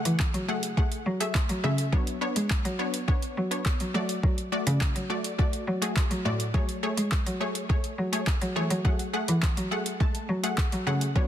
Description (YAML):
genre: dance-pop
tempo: 104 BPM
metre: 4/4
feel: straight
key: F# minor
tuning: A4 = 439 Hz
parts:
  - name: wide unison pluck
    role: accompaniment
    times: 0.0-11.3 s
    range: G#3 to A5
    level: -31 LUFS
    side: left 1 dB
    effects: sidechain pumping
  - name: clear cello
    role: bass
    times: 0.1-11.3 s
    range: A2 to G#3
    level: -29 LUFS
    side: equal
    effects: sidechain pumping
  - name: smooth R&B drum kit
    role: drums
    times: 0.1-11.3 s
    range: handclaps, hi-hat, kick drum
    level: -27 LUFS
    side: equal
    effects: overdrive
room: digital ambience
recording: dense, heavily limited modern master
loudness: -25 LUFS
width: side -11 dB against mid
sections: 0.0-11.3 A section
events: none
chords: 0.0 Amaj7(no3); 1.9 Bmadd9/F#; 3.9 D; 6.5 Amaj7/F#; 8.8 F#madd9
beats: 0.20 0.77 1.35 | 1.93 2.50 3.08 3.66 | 4.23 4.81 5.39 5.96 | 6.54 7.12 7.70 8.27 | 8.85 9.43 10.00 10.58 | 11.16